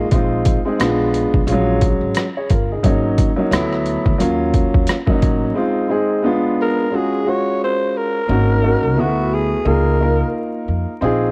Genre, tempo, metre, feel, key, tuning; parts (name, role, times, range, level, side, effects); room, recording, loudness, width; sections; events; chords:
hip hop, jazz-hop; 88 BPM; 4/4; swing 58% on 16ths; A4 = 440 Hz
dark concert grand piano; accompaniment; 0.0-11.3 s; F3 to Db5; -20 LUFS; equal
upright bass; bass; 0.0-11.3 s; G1 to F2; -23 LUFS; equal
boom bap sampler-style drum kit; drums; 0.1-5.4 s; hi-hat, kick drum, rim click; -20 LUFS; equal; overdrive
growling alto saxophone; melody; 6.6-10.3 s; F#4 to Db5; -23 LUFS; equal
light reverb, small room ambience; worn, warbling old tape, cassette tape, vinyl crackle, warbly pitch drift; -17 LUFS; mono
0.0-5.6 A section; 5.6-11.3 B section
0.1 Bb7sus4; 0.8 Bb7b9; 1.5 Gbmaj9; 2.8 Ab9sus4; 3.5 D6; 4.2 Ebm7; 5.6 Ab6; 6.2 Bb7b9; 6.9 Gbmaj9#11/Ab; 8.3 Ab9sus4; 9.0 D6; 9.7 Db6